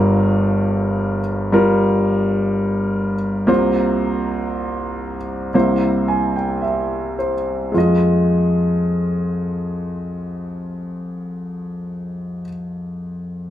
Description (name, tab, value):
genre	folk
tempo	53-63 BPM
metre	4/4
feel	straight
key	F minor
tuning	A4 = 444 Hz
part	warm grand piano	accompaniment	0.0-13.5 s	G1 to Ab5	-17 LUFS	equal	none
room	moderate studio reverb, RT60 0.8 s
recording	none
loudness	-16 LUFS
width	side -12 dB against mid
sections	0.0-7.8 A section; 7.8-12.3 B section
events	slowing down 0.0-7.8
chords	0.0 Gm7; 3.5 C7sus4; 5.5 C7; 7.8 Fm7